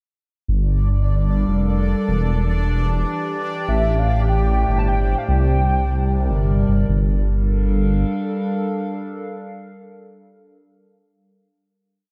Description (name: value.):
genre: IDM.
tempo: 150 BPM.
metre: 4/4.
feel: straight.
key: G dorian.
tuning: A4 = 440 Hz.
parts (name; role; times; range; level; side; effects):
warbly tape-like pad; sustained chords; 1.1-10.4 s; A2 to G5; -27 LUFS; equal; chorus, built-in reverb, phaser.
dark detuned saw bass; bass; 0.5-8.0 s; E1 to C2; -20 LUFS; equal; tube saturation.
bubbling stepped-filter texture; texture; 0.5-6.9 s; D4 to D5; -34 LUFS; equal; chorus, built-in reverb.
warbly nostalgic lead; melody; 3.7-6.4 s; E5 to A5; -27 LUFS; equal; analog chorus.
room: light reverb.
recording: none.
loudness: -20 LUFS.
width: mono.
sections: 0.5-6.9 groove; 6.9-10.1 final chord.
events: none.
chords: 0.5 Gm7; 2.1 Em7; 3.7 Am7; 5.3 C5; 6.9 Gm7.